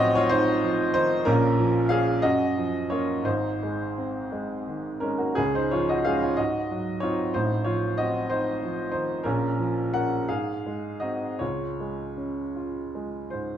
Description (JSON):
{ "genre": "classical, romantic character piece for solo piano", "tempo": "51-65 BPM (dotted quarters)", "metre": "6/8", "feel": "rubato", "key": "Db major", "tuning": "A4 = 439 Hz", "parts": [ { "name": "clear upright piano", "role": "solo", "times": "0.0-13.6 s", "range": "Ab1 to Gb5", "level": "-23 LUFS", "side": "equal", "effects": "none" } ], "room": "moderate recital hall reverb, RT60 1.6 s", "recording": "dark, warm production", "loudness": "-23 LUFS", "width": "side -10 dB against mid", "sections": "0.0-13.6 A section", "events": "none", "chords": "0.0 F7/A; 1.3 Bbm; 2.2 Gbmaj7; 3.3 Ab; 5.4 Db; 6.4 Ab7; 7.3 F7/A; 9.2 Bbm; 10.3 Ab; 11.4 Db" }